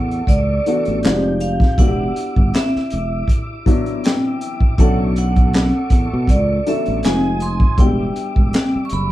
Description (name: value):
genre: R&B, neo-soul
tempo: 80 BPM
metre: 4/4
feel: swing 54% on 16ths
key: unclear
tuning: A4 = 442 Hz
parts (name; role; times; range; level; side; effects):
- vibraphone with medium hard mallets; melody; 0.0-9.1 s; D5 to C#6; -24 LUFS; right 2 dB; none
- dark upright piano; accompaniment; 0.0-9.1 s; E3 to A4; -24 LUFS; left 2 dB; none
- tonewheel organ; sustained chords; 0.0-9.1 s; G3 to Eb6; -32 LUFS; right 1 dB; slow rotary speaker, chorus vibrato
- fingered electric bass; bass; 0.0-9.1 s; E1 to B2; -20 LUFS; equal; none
- crunchy breakbeat drum kit; drums; 0.1-9.1 s; handclaps, hi-hat, kick drum, snare drum; -16 LUFS; equal; none
room: moderate small room reverb, RT60 0.5 s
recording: band playing live in one room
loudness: -14 LUFS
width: side -15 dB against mid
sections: 0.0-9.1 A section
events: none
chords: 0.0 Bm11; 1.0 Fm9; 1.8 Em9; 4.8 Bm11; 7.0 Fm7; 7.8 Em9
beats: 0.28 1.03 | 1.78 2.53 3.28 4.03 | 4.78 5.53 6.28 7.03 | 7.78 8.53